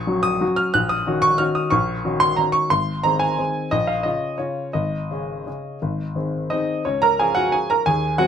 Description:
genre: classical, piano waltz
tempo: 165-193 BPM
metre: 3/4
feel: rubato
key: Db major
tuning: A4 = 439 Hz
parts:
  - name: warm baby grand piano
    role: solo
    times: 0.0-8.3 s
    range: Ab1 to Gb6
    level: -18 LUFS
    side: equal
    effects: none
room: light reverb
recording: minimal, uncompressed stereo recording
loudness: -18 LUFS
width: side -8 dB against mid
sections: 0.0-6.9 A section; 6.9-8.3 B section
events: none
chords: 0.0 Gb/Bb; 0.7 Ebm7/Bb; 2.7 Ab; 3.7 Bbm; 4.8 Absus4; 5.8 Ab; 6.9 Db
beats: 0.08 0.42 | 0.75 1.07 1.40 | 1.73 2.05 2.38 | 2.71 3.05 3.39 | 3.72 4.05 4.40 | 4.75 5.11 5.47 | 5.82 6.16 6.52 | 6.87 7.20 7.54 | 7.86 8.19

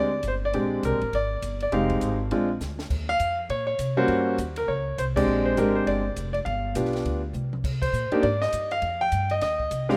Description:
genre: jazz piano trio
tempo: 203 BPM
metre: 4/4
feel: swing 61% on 8ths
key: Bb mixolydian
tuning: A4 = 437 Hz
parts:
  - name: warm concert grand piano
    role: melody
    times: 0.0-10.0 s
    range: G3 to G5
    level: -26 LUFS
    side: equal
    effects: none
  - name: upright bass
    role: bass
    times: 0.0-10.0 s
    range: F1 to C3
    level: -32 LUFS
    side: equal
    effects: none
  - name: compact cocktail drum kit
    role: drums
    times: 0.2-9.9 s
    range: crash cymbal, hi-hat, kick drum, ride cymbal, snare drum, toms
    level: -39 LUFS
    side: equal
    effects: none
room: light reverb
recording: rough home demo mix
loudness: -25 LUFS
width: mono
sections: 0.0-10.0 A section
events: drum fill 2.6, 7.3; band accent 5.1, 7.8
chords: 0.0 Bb13; 1.7 Fm7; 2.3 Bb9; 2.9 Eb7sus2; 4.1 Cm7; 5.3 Bb13; 6.5 G7; 7.6 Cm7; 8.8 Fsus2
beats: 0.24 | 0.53 0.83 1.13 1.42 | 1.72 2.02 2.31 2.61 | 2.90 3.20 3.50 3.79 | 4.09 4.38 4.68 4.98 | 5.27 5.57 5.86 6.16 | 6.46 6.75 7.05 7.34 | 7.64 7.93 8.23 8.53 | 8.82 9.12 9.41 9.71

